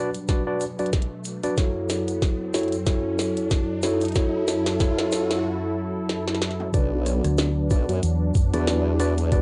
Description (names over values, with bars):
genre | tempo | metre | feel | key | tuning
glitch hop | 93 BPM | 4/4 | swing 56% on 16ths | B minor | A4 = 438 Hz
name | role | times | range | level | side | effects
warm analog pad | sustained chords | 0.0-9.4 s | F#2 to B4 | -32 LUFS | equal | chorus, sidechain pumping
tine electric piano | stabs | 0.0-9.4 s | D4 to D5 | -29 LUFS | equal | vintage 12-bit sampler grit, sidechain pumping, low-pass filter, analog delay
riser | sound effects | 0.2-5.4 s | none | -38 LUFS | equal | none
glitchy drum kit | drums | 0.1-9.4 s | hi-hat, rim click, snare drum, toms | -31 LUFS | equal | high-pass filter on hats, high-pass filter on snare, high-pass filter on toms, high-pass filter on room
egg shaker | percussion | 0.1-9.4 s | none | -43 LUFS | equal | none
electronic kick drum | drums | 0.3-9.4 s | none | -24 LUFS | equal | overdrive
formant-sweep wobble bass | bass | 6.7-9.4 s | B1 to F#2 | -26 LUFS | equal | chorus
hollow-body short-scale fingered electric bass | bass | 7.2-8.5 s | D2 to F#2 | -25 LUFS | equal | none
room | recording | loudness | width
moderate studio reverb, RT60 0.6 s | dry, gritty hardware recording, nothing above 10.3 kHz | -24 LUFS | mono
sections
0.0-6.7 A section; 6.7-9.4 B section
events
build-up 0.0-6.7; drum fill 0.0-5.4, 6.1-6.7; filter sweep on tine electric piano 0.0-6.7; filter sweep on analog synth pad 0.0-6.7; riser 0.2-5.4; break 5.4-6.7; drop 6.7-9.4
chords
0.0 Bm; 1.6 F#m7; 6.7 Bm